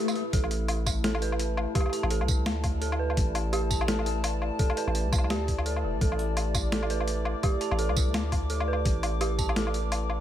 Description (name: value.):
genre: half-time drum and bass.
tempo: 169 BPM.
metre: 4/4.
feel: swing 59% on 16ths, half-time.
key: unclear.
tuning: A4 = 440 Hz.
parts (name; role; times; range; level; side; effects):
dark analog pad; sustained chords; 0.0-10.2 s; A3 to D6; -34 LUFS; left 1 dB; wide subtle chorus, sidechain pumping.
dark detuned synth bell; arpeggios; 0.0-10.2 s; G4 to A5; -33 LUFS; right 4 dB; chorus, ping-pong delay.
boom bap sampler-style drum kit; drums; 0.1-10.2 s; hi-hat, snare drum, tambourine, woodblock; -32 LUFS; left 1 dB; overdrive, studio reverb.
long sustained 808-style bass; bass; 0.3-10.2 s; E1 to D2; -30 LUFS; equal; none.
electronic kick drum; drums; 0.3-9.5 s; none; -27 LUFS; equal; overdrive, studio reverb.
room: little or no reverb.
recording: none.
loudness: -25 LUFS.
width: side -11 dB against mid.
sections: 0.0-10.2 A section.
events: break 0.0-0.3.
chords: 0.0 A5.